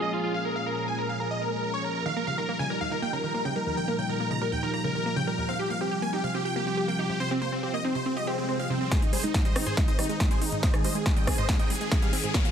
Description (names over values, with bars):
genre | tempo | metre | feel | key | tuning
uplifting trance | 140 BPM | 4/4 | straight | Ab major | A4 = 440 Hz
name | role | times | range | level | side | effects
big supersaw lead | melody | 0.0-12.5 s | C4 to Bb5 | -30 LUFS | right 1 dB | phaser, cassette tape, sidechain pumping, low-pass filter, tape echo
bright baby grand piano | second line | 0.0-2.0 s | Ab4 | -36 LUFS | equal | ping-pong delay
lush unison pad | sustained chords | 0.0-12.5 s | Bb2 to Ab4 | -32 LUFS | left 1 dB | chorus, sidechain pumping
wide unison pluck | arpeggios | 2.1-12.5 s | Eb2 to G4 | -34 LUFS | right 2 dB | sidechain pumping, ping-pong delay
swell and riser | sound effects | 8.2-12.5 s | none | -39 LUFS | left 2 dB | none
big-room dance drum kit | drums | 8.9-12.5 s | hi-hat, rim click, snare drum | -31 LUFS | equal | low-pass filter on snare, sidechain pumping on hats, low-pass filter on hats, low-pass filter on room
electronic kick drum | drums | 8.9-12.4 s | none | -25 LUFS | equal | none
room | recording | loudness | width
light reverb, digital ambience | none | -25 LUFS | side -8 dB against mid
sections
0.0-8.9 A section; 8.9-12.5 B section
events
swell 8.2-8.9; build-up 8.9-12.5; drum fill 8.9-12.5; riser 8.9-12.5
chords
0.0 Bbm7; 2.1 Ebadd9; 5.5 Csus4; 8.9 Ab